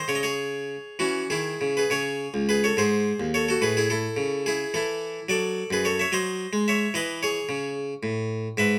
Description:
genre	classical, baroque-style suite movement for harpsichord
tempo	65-74 BPM (dotted quarters)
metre	6/8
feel	rubato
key	C# minor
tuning	A4 = 442 Hz
part	harpsichord	solo	0.0-8.8 s	C#2 to E5	-26 LUFS	equal	none
room	moderate studio reverb, RT60 0.6 s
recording	close, detailed microphones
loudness	-26 LUFS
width	mono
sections	0.0-1.9 A section; 1.9-8.8 B section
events	none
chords	0.1 C#m; 1.9 C#5; 2.8 G#7; 3.6 A; 5.3 D/F#; 6.1 G#7/F#; 6.9 C#m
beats	| 0.08 1.00 | 1.90 2.78 | 3.61 4.45 | 5.28 6.11 | 6.94 7.76 | 8.57

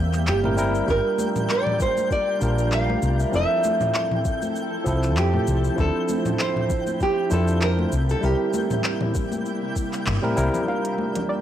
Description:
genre	sunset chillout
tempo	98 BPM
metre	4/4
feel	swing 55% on 16ths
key	G dorian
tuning	A4 = 441 Hz
part	nylon-string guitar	melody	0.0-10.1 s	G4 to F5	-25 LUFS	right 2 dB	vintage 12-bit sampler grit, analog delay
part	barky tine electric piano	accompaniment	0.0-11.4 s	F3 to C5	-27 LUFS	equal	auto-pan, low-pass filter, analog delay
part	shimmering ambient pad	sustained chords	0.0-11.4 s	G2 to E5	-31 LUFS	equal	chorus, built-in reverb
part	woody fretless electric bass	bass	0.0-10.5 s	F1 to F2	-22 LUFS	left 1 dB	tube saturation
part	twinkling granular texture	texture	0.0-11.4 s	E5 to G6	-36 LUFS	right 1 dB	built-in reverb
part	smooth R&B drum kit	drums	0.1-11.3 s	cabasa, handclaps, hi-hat, toms	-29 LUFS	equal	overdrive, small room ambience
part	congas	percussion	0.4-11.3 s	none	-32 LUFS	left 4 dB	none
part	electronic kick drum	drums	0.9-9.9 s	none	-27 LUFS	left 1 dB	overdrive, small room ambience
part	soft round pluck	arpeggios	10.7-11.4 s	D5 to F5	-30 LUFS	right 2 dB	chorus, analog delay
room	light reverb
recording	dry, gritty hardware recording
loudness	-20 LUFS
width	side -11 dB against mid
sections	0.0-10.7 A section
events	band accent 10.1-10.4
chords	0.0 C7; 0.9 Gm7; 3.3 Fmaj7; 5.8 Dm9; 7.9 C7; 10.7 Gm7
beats	0.27 | 0.89 1.50 2.11 2.72 | 3.33 3.95 4.56 5.17 | 5.78 6.39 7.01 7.62 | 8.23 8.84 9.46 10.07 | 10.68 11.29

